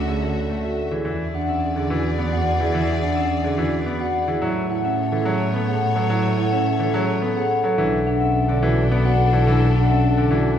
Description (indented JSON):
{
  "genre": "classical, minimalist pattern music",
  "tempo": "107 BPM",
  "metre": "3/4",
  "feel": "straight",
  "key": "E mixolydian",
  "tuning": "A4 = 440 Hz",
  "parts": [
    { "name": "concert harp", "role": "melody", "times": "0.0-10.6 s", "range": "A4 to F#5", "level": "-25 LUFS", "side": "left 4 dB", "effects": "none" },
    { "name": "clear chamber violin section", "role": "sustained chords", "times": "0.0-10.6 s", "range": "D4 to E5", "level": "-31 LUFS", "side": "left 4 dB", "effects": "none" },
    { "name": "rich double bass", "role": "bass", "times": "0.0-10.6 s", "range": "B1 to A2", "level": "-22 LUFS", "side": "right 1 dB", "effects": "none" },
    { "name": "bright grand piano", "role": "accompaniment", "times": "0.1-10.5 s", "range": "D3 to B3", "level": "-25 LUFS", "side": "left 1 dB", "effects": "none" },
    { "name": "marimba with soft mallets", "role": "arpeggios", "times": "0.1-10.5 s", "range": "C#4 to A4", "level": "-25 LUFS", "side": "right 4 dB", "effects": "none" }
  ],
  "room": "wet scoring stage reverb, RT60 1.8 s",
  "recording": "heard from further back in the room",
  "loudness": "-18 LUFS",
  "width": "side -9 dB against mid",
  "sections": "0.0-10.6 A section",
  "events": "none",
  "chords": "0.0 Dmaj9#11; 1.1 E9; 4.4 A69; 7.8 Bm9"
}